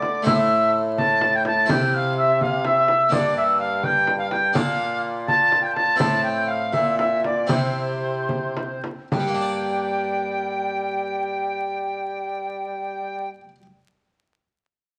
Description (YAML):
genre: classical, renaissance-style consort dance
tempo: 70-84 BPM (dotted quarters)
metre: 6/8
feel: straight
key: G dorian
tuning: A4 = 440 Hz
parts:
  - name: silver concert flute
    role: melody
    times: 0.0-13.3 s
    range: G5 to A6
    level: -26 LUFS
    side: equal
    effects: none
  - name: bright tenor recorder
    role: second line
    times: 0.0-13.3 s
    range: C5 to A5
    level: -27 LUFS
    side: equal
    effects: none
  - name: harpsichord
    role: accompaniment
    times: 0.0-13.6 s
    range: G2 to D5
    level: -30 LUFS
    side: equal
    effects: none
  - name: mellow bassoon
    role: bass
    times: 0.0-13.3 s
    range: G2 to G3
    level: -32 LUFS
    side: equal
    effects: none
  - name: frame drum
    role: percussion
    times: 0.0-9.4 s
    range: none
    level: -29 LUFS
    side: equal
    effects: none
room: moderate large studio reverb, RT60 1.1 s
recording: vinyl crackle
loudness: -22 LUFS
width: mono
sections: 0.0-9.1 A section; 9.1-12.5 B section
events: slowing down 5.3-9.1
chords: 0.3 Am; 1.7 C; 3.1 Gm; 4.6 Bb; 6.0 Am; 7.5 C; 9.1 Gm